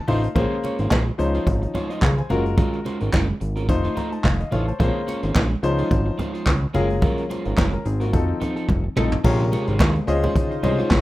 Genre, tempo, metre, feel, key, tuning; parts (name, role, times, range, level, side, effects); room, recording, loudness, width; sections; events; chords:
early-eighties boogie funk; 108 BPM; 4/4; swing 56% on 16ths; Bb minor; A4 = 440 Hz
clear concert grand piano; accompaniment; 0.0-11.0 s; C3 to Bb5; -25 LUFS; left 3 dB
electric guitar at the edge of break-up; riff; 0.1-10.9 s; F3 to Db5; -30 LUFS; right 4 dB; lush chorus
fat analog bass; bass; 0.1-11.0 s; F1 to Eb2; -22 LUFS; equal
vintage brush drum kit; drums; 0.1-11.0 s; crash cymbal, handclaps, hi-hat, kick drum, snare drum, toms; -21 LUFS; equal
congas; percussion; 0.1-11.0 s; -30 LUFS; left 1 dB
chorused pulse-width pad; sustained chords; 9.2-11.0 s; C3 to C5; -29 LUFS; left 2 dB
light reverb; rough home demo mix; -19 LUFS; side -17 dB against mid
0.0-9.2 A section; 9.2-11.0 B section
grand piano fill 0.0-0.4, 3.7-4.8; drum fill 8.7-9.2
0.4 Bbm9; 1.2 Dbmaj9; 2.3 Gbmaj9; 3.7 F7; 4.8 Bbm9; 5.6 Dbmaj9; 6.7 Gbmaj9; 8.1 F7; 9.2 Bbm9; 10.1 Dbmaj9